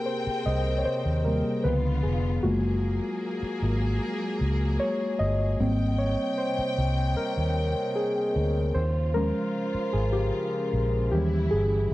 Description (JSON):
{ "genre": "R&B", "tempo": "76 BPM", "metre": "4/4", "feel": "straight", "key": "Ab major", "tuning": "A4 = 440 Hz", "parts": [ { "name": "muted felt-like synth keys", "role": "accompaniment", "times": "0.0-11.9 s", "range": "C3 to Eb5", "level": "-27 LUFS", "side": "equal", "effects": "chorus" }, { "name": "warm studio string section", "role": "sustained chords", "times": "0.0-11.9 s", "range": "C3 to G5", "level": "-35 LUFS", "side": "left 1 dB", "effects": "none" }, { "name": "vintage muted fingered electric bass", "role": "bass", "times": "0.3-11.9 s", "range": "F1 to Eb2", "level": "-26 LUFS", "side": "equal", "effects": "none" } ], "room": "light reverb, small room ambience", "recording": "dry, gritty hardware recording, cassette tape", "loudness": "-24 LUFS", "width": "side -17 dB against mid", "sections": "0.0-11.9 A section", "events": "synth keys solo 0.0-11.9", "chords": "0.0 Abmaj7; 1.7 Db7b9; 2.4 Gbmaj9; 5.6 Abmaj7; 8.8 Eb9sus4; 11.1 Eb7b9", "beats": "0.07 0.86 1.65 | 2.44 3.23 4.02 4.81 | 5.60 6.39 7.18 7.97 | 8.76 9.55 10.34 11.12 | 11.91" }